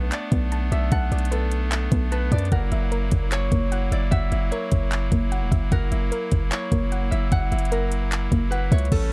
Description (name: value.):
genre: hip hop, atmospheric cloud-rap.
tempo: 150 BPM.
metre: 4/4.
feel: half-time.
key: unclear.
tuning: A4 = 441 Hz.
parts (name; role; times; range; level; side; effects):
Celtic harp; melody; 0.0-9.1 s; A4 to F#5; -34 LUFS; equal; low-pass filter, analog delay.
pipe organ, clarinet reed; sustained chords; 0.0-9.1 s; F#3 to E4; -34 LUFS; equal; sidechain pumping.
soft round pluck; arpeggios; 0.0-8.9 s; A#3 to A5; -34 LUFS; equal; chorus, low-pass filter, analog delay.
warm 808-style bass; bass; 0.0-9.1 s; E1 to F#2; -26 LUFS; equal; none.
smooth R&B drum kit; drums; 0.1-9.0 s; crash cymbal, handclaps, hi-hat, kick drum; -26 LUFS; equal; none.
room: digital ambience.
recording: dark, warm production.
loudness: -23 LUFS.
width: mono.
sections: 0.0-8.9 A section.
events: none.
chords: 0.0 Bm7; 2.5 F#7.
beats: 0.12 0.52 | 0.92 1.32 1.72 2.12 | 2.52 2.92 3.32 3.72 | 4.12 4.52 4.92 5.32 | 5.72 6.12 6.52 6.92 | 7.32 7.72 8.12 8.52 | 8.92.